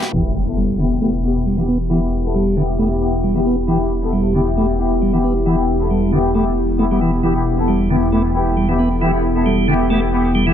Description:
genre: breakbeat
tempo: 135 BPM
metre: 4/4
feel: swing 54% on 16ths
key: E minor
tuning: A4 = 440 Hz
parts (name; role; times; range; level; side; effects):
- deep dark ambient pad; sustained chords; 0.0-10.5 s; B3 to A4; -22 LUFS; right 1 dB; chorus, built-in reverb, vintage 12-bit sampler grit
- tonewheel organ; riff; 0.1-10.5 s; D3 to B3; -20 LUFS; right 1 dB; stopped rotary speaker, low-pass filter, dub echo
- bright studio string section; stabs; 0.1-10.5 s; B3 to A4; -20 LUFS; left 4 dB; low-pass filter, dub echo
- phased detuned saw bass; bass; 0.1-10.5 s; E1; -21 LUFS; equal; phaser
- impact; sound effects; 0.1-1.9 s; none; -25 LUFS; equal; none
room: light reverb, digital ambience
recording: low-pass filter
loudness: -15 LUFS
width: side -9 dB against mid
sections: 0.1-10.5 A section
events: impact 0.1-1.9; filter sweep 0.1-10.5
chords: 0.1 Em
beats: | 0.13 0.57 1.02 1.46 | 1.91 2.35 2.79 3.24 | 3.68 4.13 4.57 5.02 | 5.46 5.91 6.35 6.79 | 7.24 7.68 8.13 8.57 | 9.02 9.46 9.91 10.35

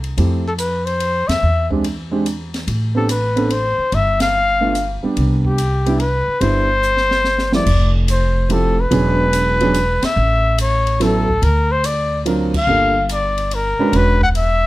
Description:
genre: jazz, small-group swing and bop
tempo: 144 BPM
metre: 3/4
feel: swing 67% on 8ths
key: C major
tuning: A4 = 440 Hz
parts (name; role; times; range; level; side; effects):
- upright bass; bass; 0.0-14.7 s; E1 to F2; -19 LUFS; equal; none
- open jazz drum kit; drums; 0.0-14.5 s; crash cymbal, hi-hat, kick drum, ride cymbal, snare drum; -27 LUFS; equal; none
- warm grand piano; accompaniment; 0.2-14.2 s; F2 to B4; -19 LUFS; right 2 dB; none
- mellow trumpet; melody; 0.5-14.7 s; G4 to F#5; -18 LUFS; left 2 dB; none
room: light reverb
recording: close, detailed microphones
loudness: -14 LUFS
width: side -17 dB against mid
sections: 0.0-7.7 A section; 7.7-14.7 B section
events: band accent 1.2, 4.1, 10.0, 12.5; drum fill 6.8-7.7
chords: 0.2 Fmaj7; 1.4 E7alt; 2.7 Amadd9; 3.9 G7; 5.2 Cmaj7; 7.7 Fmaj7; 8.9 E13; 10.2 A6; 11.4 D7alt; 12.7 Gm7; 13.9 E13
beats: | 0.18 0.60 1.01 | 1.43 1.84 2.26 | 2.68 3.09 3.51 | 3.92 4.34 4.76 | 5.17 5.59 6.00 | 6.42 6.84 7.25 | 7.67 8.09 8.51 | 8.92 9.34 9.76 | 10.18 10.59 11.01 | 11.43 11.85 12.26 | 12.68 13.10 13.52 | 13.94 14.35

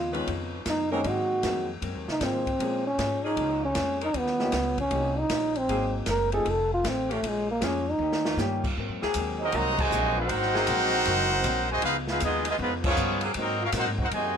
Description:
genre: jazz, big band swing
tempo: 156 BPM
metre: 4/4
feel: swing 66% on 8ths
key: Ab mixolydian, Ab major from 8.8 s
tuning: A4 = 440 Hz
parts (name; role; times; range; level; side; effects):
- mellow trombone; melody; 0.0-8.4 s; Ab3 to Bb4; -27 LUFS; right 1 dB; none
- vintage hollow-body jazz guitar; accompaniment; 0.0-14.4 s; F2 to G4; -38 LUFS; left 4 dB; none
- upright bass; bass; 0.0-14.4 s; F1 to Bb2; -33 LUFS; equal; none
- warm baby grand piano; accompaniment; 0.1-8.6 s; Eb3 to A4; -33 LUFS; left 1 dB; none
- clear saxophone section; sustained chords; 0.1-13.3 s; Eb3 to Cb5; -33 LUFS; left 2 dB; none
- open jazz drum kit; drums; 0.1-14.2 s; crash cymbal, hi-hat, kick drum, ride cymbal, snare drum; -33 LUFS; equal; none
- clear trumpet section; melody; 9.4-14.4 s; Ab3 to Bb5; -26 LUFS; right 1 dB; none
- warm trombone section; second line; 9.4-14.4 s; C3 to Gb4; -31 LUFS; right 1 dB; none
room: moderate club reverb, RT60 0.8 s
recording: none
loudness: -24 LUFS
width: side -7 dB against mid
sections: 0.0-8.8 A section; 8.8-14.4 B section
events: trombone solo 0.0-8.8; drum fill 8.0-8.4; band accent 9.7, 12.8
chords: 0.0 Db9; 1.1 Ab9; 2.6 Bbm7; 4.1 Eb9; 5.7 Ab9; 6.5 F7; 7.2 Bbm7; 8.0 Eb7; 8.8 Ab9; 11.8 Db9; 13.4 Ab9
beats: 0.28 0.67 | 1.05 1.44 1.82 2.21 | 2.60 2.98 3.37 3.75 | 4.14 4.53 4.91 5.30 | 5.68 6.07 6.46 6.84 | 7.23 7.61 8.00 8.38 | 8.76 9.15 9.53 9.91 | 10.30 10.68 11.06 11.44 | 11.83 12.21 12.59 12.97 | 13.36 13.74 14.12

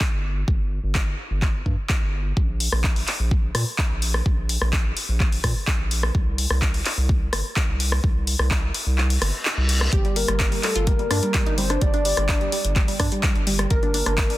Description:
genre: progressive house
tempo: 127 BPM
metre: 4/4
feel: straight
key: G minor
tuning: A4 = 440 Hz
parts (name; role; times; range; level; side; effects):
- deep house drum kit; drums; 0.0-14.4 s; handclaps, hi-hat, rim click; -25 LUFS; left 1 dB; soft clipping on snare
- electronic kick drum; drums; 0.0-14.3 s; none; -22 LUFS; equal; none
- round analog bass; bass; 0.1-14.4 s; G1 to Bb2; -24 LUFS; equal; sidechain pumping
- reverse cymbal; sound effects; 9.2-9.9 s; none; -30 LUFS; left 2 dB; none
- soft octave-layered synth lead; melody; 9.9-14.4 s; G4 to D5; -26 LUFS; equal; chorus, digital delay
- wide unison pluck; arpeggios; 9.9-14.4 s; G3 to Bb4; -28 LUFS; right 1 dB; sidechain pumping, digital delay
room: digital ambience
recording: dense, heavily limited modern master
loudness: -20 LUFS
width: side -16 dB against mid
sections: 0.0-14.4 A section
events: kick drops out 9.0-9.9; reverse cymbal 9.2-9.9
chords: 0.0 N.C.; 6.1 C5; 9.9 Gm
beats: 0.01 | 0.48 0.95 1.42 1.90 | 2.37 2.84 3.31 3.79 | 4.26 4.73 5.20 5.67 | 6.15 6.62 7.09 7.56 | 8.04 8.51 8.98 9.45 | 9.93 10.40 10.87 11.34 | 11.82 12.29 12.76 13.23 | 13.71 14.18

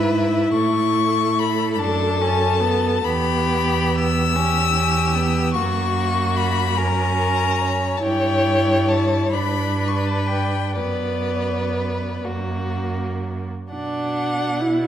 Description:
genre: classical, slow romantic movement for string quartet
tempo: 40-51 BPM (dotted quarters)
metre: 6/8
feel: rubato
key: B minor from 3.0 s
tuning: A4 = 440 Hz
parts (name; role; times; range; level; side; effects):
- rich violin; melody; 0.0-14.9 s; D5 to E6; -24 LUFS; left 9 dB; none
- rich violin; second line; 0.0-14.9 s; F#4 to F#5; -26 LUFS; left 2 dB; none
- rich viola; accompaniment; 0.0-14.9 s; A#3 to E4; -24 LUFS; right 1 dB; none
- rich cello; bass; 0.0-14.9 s; E2 to B2; -23 LUFS; right 3 dB; none
room: wet recital hall reverb, RT60 1.6 s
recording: none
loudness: -18 LUFS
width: side -10 dB against mid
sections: 0.0-13.7 A section; 13.7-14.9 B section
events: none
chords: 0.0 E/G#; 0.5 A; 3.0 C#m7b5/E; 5.5 F#; 8.0 A7/G; 9.3 G; 10.8 Bm/F#; 12.3 F#; 13.7 Bm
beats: | 0.52 1.79 | 3.05 4.36 | 5.54 6.76 | 8.03 9.33 | 10.77 12.26 | 13.72

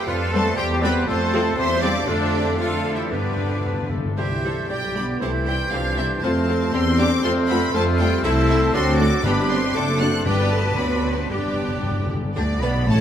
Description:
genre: quick classical-period movement for symphony orchestra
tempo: 118 BPM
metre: 2/4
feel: rubato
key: C major, G major from 8.2 s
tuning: A4 = 441 Hz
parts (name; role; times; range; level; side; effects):
- clear chamber violin section; melody; 0.0-13.0 s; D5 to F#6; -30 LUFS; equal; none
- bright clarinet; second line; 0.0-13.0 s; C4 to C#5; -31 LUFS; left 4 dB; none
- clear chamber violin section; second line; 0.0-13.0 s; D4 to E5; -31 LUFS; equal; none
- silver concert flute; second line; 0.0-13.0 s; F4 to G6; -30 LUFS; right 1 dB; none
- mellow bassoon; accompaniment; 0.0-13.0 s; D3 to B3; -31 LUFS; right 4 dB; none
- dark trumpet section; stabs; 0.0-3.9 s; D4 to D5; -30 LUFS; left 1 dB; none
- clear chamber cello section; bass; 0.0-13.0 s; D2 to B4; -28 LUFS; left 2 dB; none
- warm oboe; second line; 0.1-13.0 s; D4 to B5; -32 LUFS; left 1 dB; none
- mellow French horn section; sustained chords; 0.1-13.0 s; D3 to F#4; -27 LUFS; equal; none
- rich chamber double bass section; bass; 0.1-13.0 s; F#1 to G2; -24 LUFS; right 1 dB; none
- clear symphonic viola section; accompaniment; 0.3-13.0 s; D3 to G4; -29 LUFS; left 1 dB; none
- timpani; percussion; 3.1-4.1, 9.2-12.3 s; G2; -28 LUFS; left 2 dB; none
room: wet cathedral reverb, RT60 6.7 s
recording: in a vast, echoing space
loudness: -18 LUFS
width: side -9 dB against mid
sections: 0.0-4.2 A section; 4.2-12.4 B section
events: timpani fill 3.1-4.2, 11.3-12.4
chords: 0.1 G7/F; 0.6 C/E; 1.1 F; 1.6 C/E; 2.1 Dm/F; 3.1 G; 4.2 C; 4.7 G/B; 5.2 C; 6.2 F; 6.7 C/E; 7.2 F; 8.2 Am/C; 8.8 D7; 9.3 G; 9.8 D7/F#; 10.3 G; 10.8 D7; 11.3 G; 12.4 G/D (rootless)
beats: | 0.07 0.57 | 1.08 1.57 | 2.08 2.59 | 3.13 3.65 | 4.18 4.70 | 5.22 5.73 | 6.24 6.74 | 7.25 7.75 | 8.25 8.75 | 9.26 9.76 | 10.27 10.78 | 11.31 11.84 | 12.37 12.88

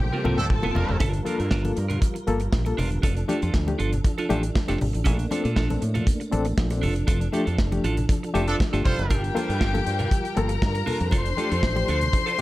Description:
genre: disco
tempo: 119 BPM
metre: 4/4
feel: straight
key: G minor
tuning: A4 = 440 Hz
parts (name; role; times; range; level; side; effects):
- warm studio string section; second line; 0.0-1.0, 9.1-12.4 s; G4 to C6; -28 LUFS; left 4 dB; none
- clean electric guitar; accompaniment; 0.0-12.4 s; C4 to Bb4; -31 LUFS; right 4 dB; tremolo
- mellow tonewheel organ; sustained chords; 0.0-12.4 s; F3 to C5; -33 LUFS; right 1 dB; overdrive, chorus vibrato, fast rotary speaker
- fingered electric bass; bass; 0.0-12.1 s; E1 to Bb2; -26 LUFS; equal; none
- modern studio drum kit; drums; 0.1-12.4 s; hi-hat, kick drum, snare drum, toms; -25 LUFS; equal; none
- barky reed electric piano; accompaniment; 0.2-12.4 s; G2 to A4; -29 LUFS; left 3 dB; overdrive, fast tremolo
- congas; percussion; 0.3-12.3 s; none; -34 LUFS; left 2 dB; none
- clear horn section; stabs; 0.4-1.0, 8.5-9.2 s; F3 to C5; -32 LUFS; right 2 dB; tape echo
room: studio reverb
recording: none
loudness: -21 LUFS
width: side -17 dB against mid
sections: 0.0-1.0 A section; 1.0-12.4 A section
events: drum fill 0.0-1.0; band accent 0.0-1.0, 7.1-9.1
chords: 0.0 Gm11; 1.0 Gm7; 3.0 F6; 5.1 Bbmaj7; 6.8 F6; 9.1 Gm7; 11.1 F6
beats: 0.00 0.50 | 1.01 1.52 2.02 2.53 | 3.03 3.54 4.04 4.55 | 5.06 5.56 6.07 6.57 | 7.08 7.59 8.09 8.60 | 9.10 9.61 10.11 10.62 | 11.12 11.63 12.13

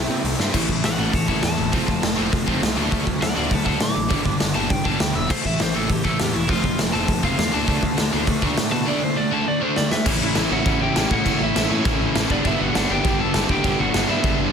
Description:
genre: punk rock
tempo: 202 BPM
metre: 4/4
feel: straight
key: A mixolydian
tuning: A4 = 438 Hz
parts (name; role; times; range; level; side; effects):
- lightly driven lead guitar; melody; 0.0-14.4 s; B3 to D6; -27 LUFS; equal; tape echo
- cranked stack guitar; riff; 0.0-14.5 s; G2 to F#4; -28 LUFS; equal; overdrive
- fuzz picked electric bass; bass; 0.0-14.5 s; E1 to C3; -28 LUFS; equal; overdrive
- raw garage drum kit; drums; 0.2-14.3 s; crash cymbal, hi-hat, kick drum, snare drum; -23 LUFS; equal; none
- crunchy overdriven guitar; riff; 0.5-14.5 s; G2 to E4; -26 LUFS; right 11 dB; none
- distorted electric guitar; riff; 0.5-14.5 s; G2 to E4; -26 LUFS; left 14 dB; distortion
room: light reverb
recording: dense, heavily limited modern master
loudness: -18 LUFS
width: side -7 dB against mid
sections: 0.5-10.1 A section; 10.1-14.5 B section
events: drum fill 0.4, 9.8; lead electric guitar solo 0.5-10.1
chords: 0.0 C; 0.5 A; 1.7 F; 2.8 D; 4.1 G; 5.3 A; 6.5 F; 7.5 D; 10.1 A; 12.3 G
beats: 0.24 | 0.54 0.84 1.13 1.43 | 1.73 2.03 2.32 2.62 | 2.92 3.21 3.51 3.81 | 4.11 4.40 4.70 5.00 | 5.30 5.59 5.89 6.19 | 6.49 6.78 7.08 7.38 | 7.68 7.97 8.27 8.57 | 8.87 9.17 9.46 9.76 | 10.06 10.36 10.66 10.96 | 11.25 11.55 11.85 12.15 | 12.45 12.74 13.04 13.34 | 13.64 13.94 14.24

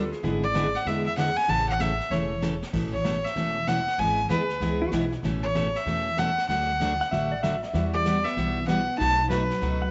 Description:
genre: country, western swing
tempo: 192 BPM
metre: 4/4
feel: swing 64% on 8ths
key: unclear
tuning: A4 = 444 Hz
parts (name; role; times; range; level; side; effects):
- clean lap steel guitar; second line; 0.0-0.3, 4.8-9.9 s; E4 to F#5; -33 LUFS; equal; none
- picked steel-string acoustic guitar; accompaniment; 0.0-9.8 s; B2 to A4; -30 LUFS; equal; none
- upright bass; bass; 0.0-9.9 s; E1 to E2; -35 LUFS; equal; none
- vintage brush drum kit; drums; 0.1-9.9 s; brushed snare drum, crash cymbal, hi-hat, kick drum, snare drum; -43 LUFS; equal; none
- clear fiddle; melody; 0.4-9.9 s; B4 to A5; -29 LUFS; equal; none
- hollow-body jazz guitar; second line; 7.9-9.9 s; F#3 to D#4; -34 LUFS; equal; none
room: moderate echo chamber reverb, RT60 1.2 s, small room ambience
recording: nothing above 7.9 kHz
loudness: -26 LUFS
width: mono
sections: 0.0-9.9 A section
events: drum fill 2.4-2.7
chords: 0.2 E7/G#; 1.5 A; 2.7 Aadd9; 4.0 E/G#; 5.2 Aadd9; 6.5 D; 7.7 Emadd9; 9.0 B7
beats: | 0.23 0.54 0.86 1.17 | 1.48 1.80 2.11 2.42 | 2.74 3.05 3.36 3.67 | 3.99 4.30 4.61 4.93 | 5.24 5.55 5.87 6.18 | 6.49 6.80 7.12 7.43 | 7.74 8.05 8.37 8.68 | 8.99 9.30 9.62

